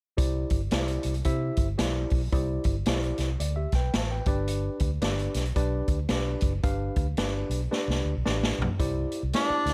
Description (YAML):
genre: uptempo 1960s-style soul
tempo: 111 BPM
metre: 4/4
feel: swing 60% on 8ths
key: C major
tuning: A4 = 440 Hz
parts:
  - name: tine electric piano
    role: accompaniment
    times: 0.2-9.7 s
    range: D4 to A5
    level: -34 LUFS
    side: equal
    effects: overdrive
  - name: vintage muted fingered electric bass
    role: bass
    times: 0.2-9.7 s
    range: F#1 to C3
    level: -32 LUFS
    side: equal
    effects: none
  - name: swinging big-band drum kit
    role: drums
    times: 0.2-9.7 s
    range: hi-hat, kick drum, snare drum, toms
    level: -31 LUFS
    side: equal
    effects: none
  - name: breathy tenor saxophone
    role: melody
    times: 9.4-9.7 s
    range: D4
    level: -27 LUFS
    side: equal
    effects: slapback echo
room: little or no reverb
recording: none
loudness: -28 LUFS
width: mono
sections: 0.2-8.8 A section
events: drum fill 7.7-8.8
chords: 0.2 Cadd9; 4.2 G; 8.8 Cadd9